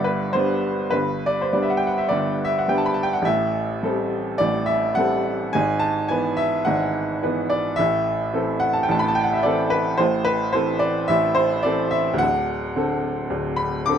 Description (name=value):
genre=classical, romantic nocturne for solo piano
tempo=53 BPM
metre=4/4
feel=rubato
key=unclear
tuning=A4 = 440 Hz
part: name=clear upright piano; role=solo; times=0.0-14.0 s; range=D1 to D6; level=-19 LUFS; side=equal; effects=none
room=light reverb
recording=close, detailed microphones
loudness=-19 LUFS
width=side -8 dB against mid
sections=0.0-14.0 A section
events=none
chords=0.0 G; 3.2 Am7; 5.5 E/G#; 7.8 Am; 12.2 D7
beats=0.93 2.11 | 3.24 4.38 5.53 6.66 | 7.78 8.89 10.01 11.11 | 12.22 13.32